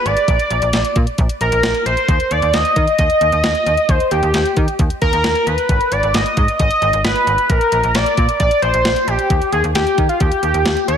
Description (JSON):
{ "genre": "synth-pop", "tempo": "133 BPM", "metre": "4/4", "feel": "straight", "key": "unclear", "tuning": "A4 = 438 Hz", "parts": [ { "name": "octave-doubled lead", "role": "melody", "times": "0.0-11.0 s", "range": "F4 to Eb5", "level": "-15 LUFS", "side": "equal", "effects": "chorus, diffuse ambient delay" }, { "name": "slap-like FM bass", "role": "bass", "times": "0.1-11.0 s", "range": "Ab1 to Eb3", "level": "-20 LUFS", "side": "equal", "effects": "none" }, { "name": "clean 12-bit digital drum machine", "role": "drums", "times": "0.1-11.0 s", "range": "hi-hat, kick drum, snare drum", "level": "-19 LUFS", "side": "equal", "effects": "overdrive" } ], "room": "wet plate reverb, RT60 1.9 s", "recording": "dreamy mix soaked in reverb", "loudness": "-13 LUFS", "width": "side -8 dB against mid", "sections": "0.0-11.0 A section", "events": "none", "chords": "0.3 Bb; 2.1 Cm/Eb; 5.7 Abm; 7.5 Bb; 9.3 Eb" }